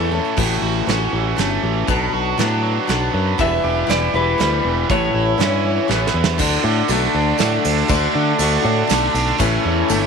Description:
folk rock and heartland rock; 120 BPM; 3/4; straight; D major; A4 = 444 Hz
electric slide guitar; second line; 0.0-0.1, 3.4-6.1 s; B4 to E5; -21 LUFS; equal
picked steel-string acoustic guitar; accompaniment; 0.0-10.1 s; E2 to A4; -21 LUFS; left 12 dB
biting overdriven guitar; riff; 0.0-10.1 s; E2 to A4; -22 LUFS; right 12 dB
fingered electric bass; bass; 0.0-10.1 s; E1 to D3; -21 LUFS; equal
tambourine; percussion; 0.2-0.3, 6.4-10.0 s; -31 LUFS; right 18 dB
soft brush drum kit; drums; 0.4-10.0 s; crash cymbal, hi-hat, kick drum, ride cymbal, snare drum; -23 LUFS; right 5 dB
bright tonewheel organ; sustained chords; 6.4-10.1 s; C#4 to D5; -25 LUFS; right 2 dB; slow rotary speaker, overdrive
light reverb, small room ambience; 1960s-style stereo with parts hard left and right; -15 LUFS; side -6 dB against mid
0.4-6.4 A section; 6.4-10.1 B section
drum fill 5.9-6.4
0.4 A6; 1.9 Bm; 3.4 Em; 4.9 Aadd9; 6.4 D; 9.4 A

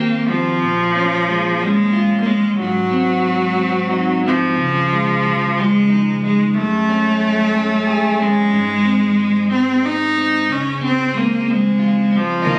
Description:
pop; 61 BPM (dotted quarters); 6/8; straight; Db major; A4 = 437 Hz
rich cello; melody; 0.0-12.6 s; F3 to Eb4; -18 LUFS; equal; tape echo
clean electric guitar; accompaniment; 0.0-12.6 s; Gb2 to Ab4; -24 LUFS; equal; double-tracked
warm studio string section; sustained chords; 12.5-12.6 s; Eb4 to F5; -22 LUFS; equal
vintage muted fingered electric bass; bass; 12.5-12.6 s; Eb2; -22 LUFS; equal
light reverb, small room ambience; recorded on a phone in the room, studio reverb, compression; -17 LUFS; mono
0.0-12.6 A section
0.0 Eb6; 0.6 Bbm7; 2.6 Ab7; 4.6 Dbadd9; 6.6 Gbmadd9; 8.5 Ab; 10.5 Dbmaj7

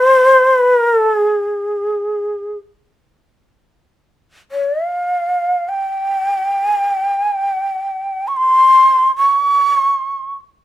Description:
japanese traditional, Japanese chamber music; free time; A4 = 440 Hz
breathy shakuhachi; solo; 0.0-10.4 s; C5 to Db6; -12 LUFS; equal
light reverb; minimal, uncompressed stereo recording; -13 LUFS; side -13 dB against mid
0.0-3.1 A section; 3.1-10.6 A section

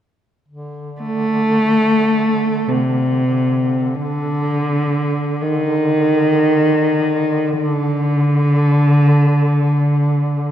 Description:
caucasian folk, Caucasian lament; free time; A4 = 440 Hz
warm duduk; drone; 0.5-10.5 s; D3; -26 LUFS; equal
warm cello; melody; 1.0-10.5 s; C3 to A3; -14 LUFS; equal
wet concert hall reverb, RT60 2.6 s; minimal, uncompressed stereo recording; -14 LUFS; side -10 dB against mid
0.5-10.5 A section

